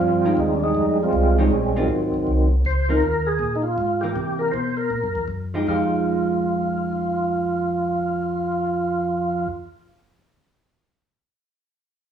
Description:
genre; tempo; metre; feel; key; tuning
soul jazz organ trio; 158 BPM; 4/4; swing 65% on 8ths; F minor; A4 = 439 Hz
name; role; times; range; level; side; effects
percussive tonewheel organ; melody; 0.0-9.5 s; Eb3 to C5; -22 LUFS; right 1 dB; slow rotary speaker, overdrive, chorus vibrato
mellow tonewheel organ; bass; 0.0-9.5 s; Ab1 to C3; -25 LUFS; left 1 dB; slow rotary speaker
vintage hollow-body jazz guitar; accompaniment; 0.2-9.6 s; E3 to G4; -26 LUFS; right 2 dB; none
room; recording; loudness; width
moderate large studio reverb, RT60 1.0 s; band playing live in one room, studio reverb; -19 LUFS; side -8 dB against mid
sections
0.0-2.6 A section; 2.6-5.7 B section; 5.7-8.7 C section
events
none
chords
0.0 Fm9; 1.9 Ab7; 2.6 Dbmaj9; 3.4 Bb5; 4.2 C7; 4.9 Gb9; 5.7 Fm9

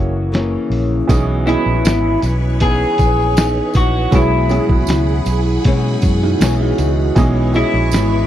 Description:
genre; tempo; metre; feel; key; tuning
indie pop, bedroom pop; 79 BPM; 4/4; straight; unclear; A4 = 440 Hz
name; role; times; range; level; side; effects
electric guitar through a small old amp; melody; 0.0-8.3 s; E4 to G#4; -19 LUFS; left 1 dB; wide subtle chorus, tape echo
flamenco guitar; accompaniment; 0.0-8.3 s; B2 to D#4; -21 LUFS; left 2 dB; lush chorus, warbly pitch drift
warm upright piano; accompaniment; 0.0-8.3 s; E3 to D#5; -24 LUFS; right 5 dB; cassette tape
vintage muted fingered electric bass; bass; 0.0-8.2 s; F#1 to B2; -17 LUFS; equal; none
lo-fi sampler-style drum kit; drums; 0.3-8.1 s; hi-hat, kick drum, snare drum; -16 LUFS; equal; none
phased string machine; sustained chords; 1.1-8.3 s; G#4 to C#6; -27 LUFS; right 2 dB; ensemble chorus, phaser
tambourine; percussion; 1.1-8.1 s; none; -33 LUFS; right 14 dB; none
electric guitar through a small old amp; second line; 6.2-7.1 s; D#4 to G#4; -22 LUFS; right 9 dB; wide subtle chorus, tape echo
room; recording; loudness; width
digital ambience; dry, close 1970s-style studio recording; -13 LUFS; side -11 dB against mid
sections
0.0-1.1 A section; 1.1-8.3 B section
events
none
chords
0.0 F#7; 1.1 C#m9; 4.1 F#9sus4/B; 7.2 C#m9

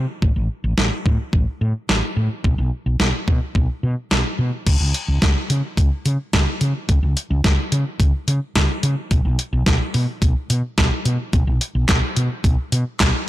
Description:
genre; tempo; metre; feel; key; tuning
synth-pop; 108 BPM; 4/4; straight; unclear; A4 = 440 Hz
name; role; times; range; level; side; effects
woody fretless electric bass; bass; 0.0-13.1 s; A1 to C#3; -19 LUFS; equal; none
clean 12-bit digital drum machine; drums; 0.2-13.1 s; crash cymbal, handclaps, hi-hat, kick drum, snare drum; -19 LUFS; equal; none
room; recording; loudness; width
light reverb; blown-out, overdriven recording, overdrive; -17 LUFS; side -15 dB against mid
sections
0.0-4.7 A section; 4.7-13.3 B section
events
none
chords
none

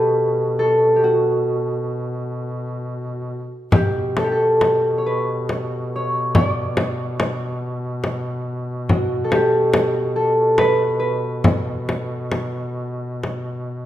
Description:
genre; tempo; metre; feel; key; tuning
caucasian folk, Caucasian lament; 56-72 BPM; 3/4; rubato; B minor; A4 = 441 Hz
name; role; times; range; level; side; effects
concert harp; melody; 0.0-13.7 s; F#4 to D5; -19 LUFS; equal; none
mellow duduk; drone; 0.0-13.9 s; B2; -26 LUFS; equal; none
frame drum; percussion; 3.7-13.5 s; none; -20 LUFS; left 1 dB; none
room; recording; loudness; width
moderate recital hall reverb, RT60 1.4 s; minimal, uncompressed stereo recording; -18 LUFS; side -12 dB against mid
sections
0.0-13.9 A section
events
none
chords
none

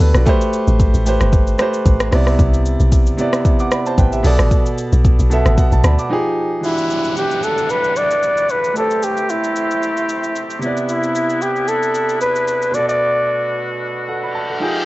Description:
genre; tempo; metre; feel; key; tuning
amapiano; 113 BPM; 4/4; swing 55% on 16ths; E minor; A4 = 439 Hz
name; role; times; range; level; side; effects
clear grand piano; accompaniment; 0.0-14.9 s; B2 to D6; -20 LUFS; right 1 dB; none
deep log drum bass; bass; 0.0-6.0 s; G1 to D2; -14 LUFS; equal; none
deep house drum kit; drums; 0.0-13.0 s; hi-hat, kick drum, rim click, shaker; -17 LUFS; equal; none
trumpet with bucket mute; melody; 6.6-13.6 s; E4 to D5; -18 LUFS; equal; ping-pong delay
warm woodwind section; sustained chords; 6.6-14.9 s; B2 to G5; -24 LUFS; left 1 dB; none
downlifter and reverse cymbal; sound effects; 6.6-10.9, 14.2-14.9 s; none; -29 LUFS; equal; none
room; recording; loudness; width
studio ambience; worn, warbling old tape, cassette tape, warbly pitch drift, nothing above 8.0 kHz; -14 LUFS; side -18 dB against mid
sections
0.0-6.6 A section; 6.6-14.9 B section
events
drop 0.0-6.6; break 6.1-6.6, 13.0-14.9; reverse cymbal 14.2-14.9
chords
0.3 Am9; 2.1 Cmaj9; 4.2 Bm7; 6.1 Fm9; 6.6 Em9; 8.8 Am9; 10.6 Cmaj9; 12.7 Bm7

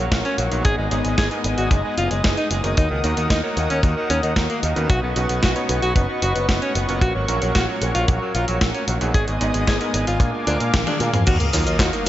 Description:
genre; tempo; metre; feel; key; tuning
italo disco; 113 BPM; 4/4; straight; Eb minor; A4 = 440 Hz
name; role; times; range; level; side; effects
edgy alto saxophone; melody; 0.0-12.1 s; Eb3 to Ab4; -25 LUFS; equal; ping-pong delay, shimmer reverb
warm analog pad; sustained chords; 0.0-12.1 s; Cb4 to Eb6; -26 LUFS; left 1 dB; chorus, shimmer reverb
clear electric grand piano; stabs; 0.0-12.1 s; Ab2 to Db5; -28 LUFS; right 2 dB; shimmer reverb
picked electric bass with an envelope filter; bass; 0.0-12.1 s; Gb1 to Bb2; -24 LUFS; equal; none
clean 12-bit digital drum machine; drums; 0.1-12.1 s; cabasa, crash cymbal, handclaps, hi-hat, snare drum, toms; -25 LUFS; equal; gated reverb
kick drum; drums; 0.1-11.9 s; none; -19 LUFS; equal; none
sub drop; sound effects; 11.4-12.1 s; none; -26 LUFS; equal; none
room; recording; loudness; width
light reverb; nothing above 7.8 kHz; -18 LUFS; side -13 dB against mid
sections
0.0-11.3 A section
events
drum fill 10.7-11.3; band accent 10.7; impact 11.3-12.1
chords
0.0 Gb; 0.6 Abm; 2.8 Ebm; 4.9 Badd9; 7.0 Gb; 9.1 Abm; 10.2 Bb7; 11.3 Ebmadd9

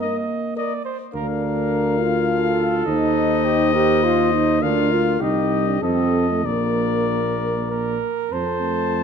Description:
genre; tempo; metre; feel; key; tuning
classical, brass quintet; 93-106 BPM; 3/4; rubato; Bb major; A4 = 440 Hz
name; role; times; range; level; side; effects
clear trumpet; melody; 0.0-9.0 s; D5 to A5; -25 LUFS; left 9 dB; none
clear flugelhorn; second line; 0.0-9.0 s; F4 to Eb5; -27 LUFS; right 7 dB; none
mellow trombone; accompaniment; 0.0-9.0 s; A3 to G4; -23 LUFS; right 2 dB; none
warm French horn; accompaniment; 0.0-9.0 s; G4 to C5; -26 LUFS; left 8 dB; none
mellow tuba; bass; 1.1-9.0 s; Bb1 to F2; -24 LUFS; right 3 dB; none
room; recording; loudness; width
moderate scoring stage reverb, RT60 1.6 s; none; -18 LUFS; side -6 dB against mid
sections
0.0-8.3 A section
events
none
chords
0.0 Eb5; 1.1 Bb/D; 2.9 Cm/Eb; 4.6 Bb/D; 5.2 Cm; 5.8 F7; 6.4 Bb; 8.3 F

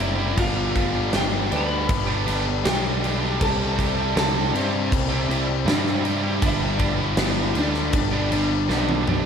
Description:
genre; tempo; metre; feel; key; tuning
quiet-loud alternative rock; 79 BPM; 4/4; straight; G major; A4 = 445 Hz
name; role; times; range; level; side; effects
twelve-string electric guitar; melody; 0.0-9.1 s; C4 to B5; -27 LUFS; left 1 dB; slapback echo
tonewheel organ; sustained chords; 0.0-9.3 s; G4 to B5; -38 LUFS; equal; none
cranked stack guitar; riff; 0.0-9.3 s; G2 to G4; -29 LUFS; left 10 dB; overdrive, slapback echo
tight distorted guitar; riff; 0.0-9.3 s; G2 to G4; -28 LUFS; right 11 dB; distortion
fuzz picked electric bass; bass; 0.0-9.3 s; F#1 to G2; -26 LUFS; equal; overdrive
big rock drum kit; drums; 0.0-9.2 s; crash cymbal, kick drum, snare drum, toms; -25 LUFS; equal; none
room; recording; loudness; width
moderate lush hall reverb, RT60 2.6 s; big arena sound; -20 LUFS; side -7 dB against mid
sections
0.0-9.3 A section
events
drum fill 8.7-9.3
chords
0.4 G; 3.4 C6; 6.4 G

